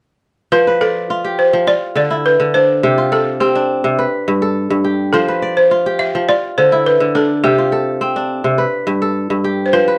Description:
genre	west african traditional, West African string and xylophone music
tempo	104 BPM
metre	4/4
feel	straight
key	F lydian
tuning	A4 = 440 Hz
part	balafon	melody	0.5-10.0 s	G4 to E5	-16 LUFS	equal	none
part	kora	arpeggios	0.5-10.0 s	G2 to D5	-18 LUFS	equal	none
room	wet small room reverb, RT60 0.5 s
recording	none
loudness	-15 LUFS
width	mono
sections	0.5-10.0 A section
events	none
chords	0.5 F; 1.7 Dm; 2.8 C5; 4.0 G; 5.1 F5; 6.3 Dm; 7.4 C5; 8.6 G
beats	| 0.53 1.10 1.68 2.25 | 2.83 3.40 3.98 4.55 | 5.13 5.71 6.28 6.86 | 7.43 8.01 8.58 9.16 | 9.73

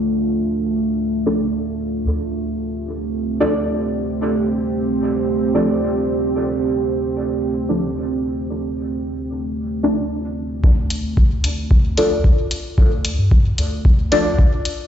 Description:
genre	dub techno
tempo	112 BPM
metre	4/4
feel	straight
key	D minor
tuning	A4 = 440 Hz
part	deep dark ambient pad	sustained chords	0.0-10.6 s	A3 to G4	-21 LUFS	right 3 dB	chorus, built-in reverb, sidechain pumping
part	warm sub bass	bass	0.0-14.3 s	D2 to G2	-24 LUFS	equal	sidechain pumping
part	deep mellow chord stab	stabs	1.3-14.3 s	D4 to D5	-22 LUFS	left 1 dB	chorus, phaser, sidechain pumping, dub echo
part	electronic kick drum	drums	10.6-14.5 s	none	-14 LUFS	equal	none
part	electronic hi-hat	drums	10.9-14.8 s	none	-26 LUFS	left 1 dB	overdrive
room	moderate spring reverb, RT60 2.1 s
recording	played on a big sound system in a bare room, stone room reverb, nothing above 7.8 kHz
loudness	-17 LUFS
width	side -9 dB against mid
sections	0.0-10.6 A section; 10.6-14.9 B section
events	none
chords	0.0 Dm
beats	0.46 0.99 1.53 | 2.06 2.60 3.14 3.67 | 4.21 4.74 5.28 5.82 | 6.35 6.89 7.42 7.96 | 8.49 9.03 9.56 10.10 | 10.64 11.17 11.71 12.24 | 12.78 13.31 13.85 14.39

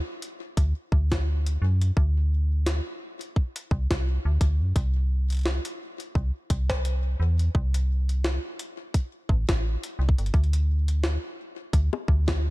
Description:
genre	IDM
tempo	86 BPM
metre	4/4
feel	swing 56% on 16ths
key	unclear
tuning	A4 = 441 Hz
part	jungle sampler-style drum kit	drums	0.2-12.4 s	bongos, hi-hat, snare drum	-33 LUFS	left 1 dB	ping-pong delay
part	metallic FM bass	bass	0.6-12.5 s	G1 to F#2	-23 LUFS	equal	none
part	electronic kick drum	drums	0.6-12.4 s	none	-24 LUFS	equal	none
room	little or no reverb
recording	dark, warm production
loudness	-23 LUFS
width	side -20 dB against mid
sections	0.0-12.5 A section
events	none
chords	none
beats	0.57 1.27 | 1.97 2.66 3.36 4.06 | 4.76 5.46 6.15 6.85 | 7.55 8.24 8.94 9.64 | 10.34 11.04 11.73 12.43

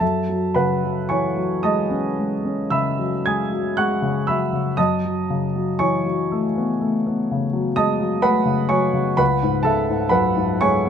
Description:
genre	classical, impressionist solo piano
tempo	36-43 BPM (dotted quarters)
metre	9/8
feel	rubato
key	F# dorian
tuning	A4 = 440 Hz
part	warm grand piano	solo	0.0-10.9 s	C#2 to G#6	-18 LUFS	equal	none
room	light reverb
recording	close, detailed microphones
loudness	-18 LUFS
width	side -8 dB against mid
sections	0.0-10.9 A section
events	none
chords	0.0 F#m9; 9.2 C#7sus4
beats	| 0.01 1.63 3.24 | 4.77 6.28 7.75 | 9.20 10.64

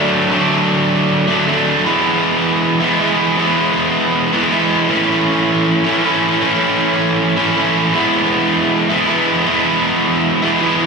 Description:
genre	punk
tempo	158 BPM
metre	4/4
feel	straight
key	E mixolydian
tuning	A4 = 441 Hz
part	distorted electric guitar	solo	0.0-10.9 s	D3 to E4	-12 LUFS	right 1 dB	distortion, slapback echo
room	little or no reverb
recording	live gig heard through the venue's PA, recital hall reverb, studio reverb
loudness	-12 LUFS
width	side -4 dB against mid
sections	0.0-10.9 A section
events	none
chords	0.0 D; 1.9 E; 4.9 A/E; 7.9 E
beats	| 0.33 0.71 1.09 1.47 | 1.85 2.24 2.62 3.00 | 3.38 3.76 4.14 4.52 | 4.90 5.28 5.66 6.04 | 6.42 6.80 7.18 7.56 | 7.94 8.32 8.70 9.08 | 9.46 9.84 10.22 10.60

